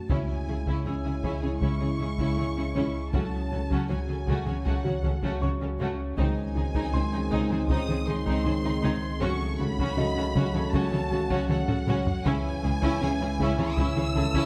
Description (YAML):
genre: cinematic, hybrid orchestral and electronic film score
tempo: 79 BPM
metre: 4/4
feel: straight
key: C# minor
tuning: A4 = 441 Hz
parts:
  - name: warm symphonic violin section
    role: melody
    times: 0.0-14.5 s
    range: F#5 to E6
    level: -40 LUFS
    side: equal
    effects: none
  - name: deep rumbling drone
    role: sustained chords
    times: 0.0-14.5 s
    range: D#3 to C#5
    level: -40 LUFS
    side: equal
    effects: none
  - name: warm concert grand piano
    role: texture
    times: 0.0-14.5 s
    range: A4 to G#6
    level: -44 LUFS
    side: equal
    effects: digital delay
  - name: rich symphonic violin section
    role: second line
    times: 0.1-14.5 s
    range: A3 to C#5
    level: -39 LUFS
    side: equal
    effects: none
  - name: warm symphonic viola section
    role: accompaniment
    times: 0.1-14.5 s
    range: C#4 to F#4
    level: -38 LUFS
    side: equal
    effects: none
  - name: mellow French horn section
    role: sustained chords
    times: 0.1-14.5 s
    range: B#3 to F#4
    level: -39 LUFS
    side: equal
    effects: none
  - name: mellow trombone section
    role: sustained chords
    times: 0.1-14.5 s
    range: C#3 to A3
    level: -39 LUFS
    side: equal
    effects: none
  - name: harp-like synth pluck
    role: arpeggios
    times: 0.1-14.5 s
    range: C#3 to G#4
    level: -36 LUFS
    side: equal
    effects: chorus
  - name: punchy sub bass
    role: bass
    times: 0.1-14.5 s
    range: C#2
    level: -36 LUFS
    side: equal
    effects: none
  - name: warm studio cello section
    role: bass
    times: 0.1-14.4 s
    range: C#3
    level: -36 LUFS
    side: equal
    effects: none
  - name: warm symphonic double bass section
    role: bass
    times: 0.1-14.2 s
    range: C#2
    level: -35 LUFS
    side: equal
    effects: none
  - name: solo taiko drums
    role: drums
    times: 0.1-14.5 s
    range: none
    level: -34 LUFS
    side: equal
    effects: none
room: moderate scoring stage reverb, RT60 1.8 s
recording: close, detailed microphones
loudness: -27 LUFS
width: mono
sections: 0.1-14.5 A section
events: drum fill 11.5-12.3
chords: 0.1 C#m; 3.1 F#m/C#; 6.2 G#/C#; 9.2 F#m/C#; 12.3 C#m